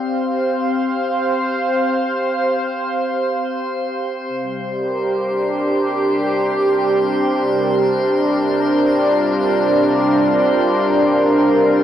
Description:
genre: ambient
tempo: free time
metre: none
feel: none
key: unclear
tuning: A4 = 440 Hz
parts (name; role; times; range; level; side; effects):
- warm analog pad; sustained chords; 0.0-11.8 s; C3 to F5; -16 LUFS; equal; chorus, cassette tape
- drifting glass-harmonics texture; texture; 0.0-11.8 s; C5 to C6; -25 LUFS; right 1 dB; chorus, built-in reverb, cassette tape
room: wet booth ambience, RT60 0.2 s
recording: home recording on cassette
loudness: -15 LUFS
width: side -10 dB against mid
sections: 0.0-11.8 A section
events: fade-in on synth texture 0.0-11.8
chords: 0.0 C5; 4.3 Gm7/C

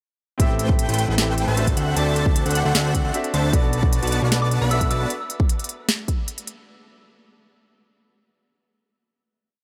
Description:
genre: future bass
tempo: 153 BPM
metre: 4/4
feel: half-time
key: unclear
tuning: A4 = 439 Hz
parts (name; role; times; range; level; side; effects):
- warm concert grand piano; accompaniment; 0.4-5.1 s; B3 to E5; -30 LUFS; equal; sidechain pumping, tape echo
- airy dreamy lead; arpeggios; 0.4-5.1 s; F#5 to B5; -34 LUFS; equal; chorus, phaser, sidechain pumping, tape echo
- supersaw chords; riff; 0.4-5.1 s; A3 to B5; -30 LUFS; equal; analog chorus, sidechain pumping
- fat analog bass; bass; 0.4-5.1 s; A1 to D2; -25 LUFS; equal; tube saturation, sidechain pumping
- electronic kick drum; drums; 0.4-6.2 s; none; -23 LUFS; equal; none
- trap drum kit; drums; 0.4-6.6 s; hi-hat, snare drum; -27 LUFS; equal; overdrive
- soft synth bell; melody; 4.4-5.0 s; D6 to E6; -32 LUFS; equal; chorus, sidechain pumping, tape echo
room: light reverb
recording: none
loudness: -21 LUFS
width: mono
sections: 0.4-6.7 drop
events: drop 0.4-6.7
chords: 0.4 Am7; 1.8 D7; 3.5 Bm7; 5.1 N.C.

